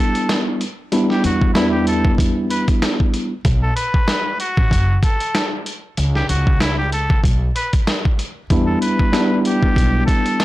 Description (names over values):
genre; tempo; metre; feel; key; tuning
hip hop, boom-bap hip-hop; 95 BPM; 4/4; swing 56% on 16ths; E dorian; A4 = 440 Hz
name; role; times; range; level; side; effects
trumpet with straight mute; melody; 0.0-10.4 s; E4 to B4; -23 LUFS; equal; high-pass filter, low-pass filter, plate reverb, digital delay
tine electric piano; accompaniment; 0.0-3.3, 8.5-10.4 s; G3 to E4; -18 LUFS; equal; overdrive, fast stereo tremolo, high-pass filter, low-pass filter
dusty soul sampler-style drum kit; drums; 0.1-10.4 s; hi-hat, kick drum, snare drum; -18 LUFS; equal; none
upright bass; bass; 1.2-10.0 s; F#1 to E2; -20 LUFS; equal; tube saturation
room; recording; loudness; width
moderate studio ambience, RT60 0.5 s; blown-out, overdriven recording, vinyl crackle, overdrive; -15 LUFS; side -16 dB against mid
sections
0.0-10.4 A section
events
none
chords
0.0 Em7; 3.4 B5; 6.0 N.C.; 8.5 Em7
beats
0.29 | 0.92 1.55 2.19 2.82 | 3.45 4.08 4.71 5.34 | 5.97 6.61 7.24 7.87 | 8.50 9.13 9.77 10.40